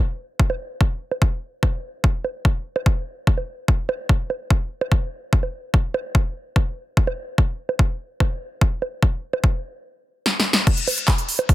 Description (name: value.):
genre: trance.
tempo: 146 BPM.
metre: 4/4.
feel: straight.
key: none.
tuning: none.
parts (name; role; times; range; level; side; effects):
electronic kick drum; drums; 0.4-11.5 s; none; -18 LUFS; equal; none.
big-room dance drum kit; drums; 0.5-11.5 s; bongos, crash cymbal, handclaps, hi-hat, snare drum; -23 LUFS; right 2 dB; none.
room: little or no reverb.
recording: dense, heavily limited modern master.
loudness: -20 LUFS.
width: side -16 dB against mid.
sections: 0.0-10.7 A section.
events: drum fill 10.3-10.7.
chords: none.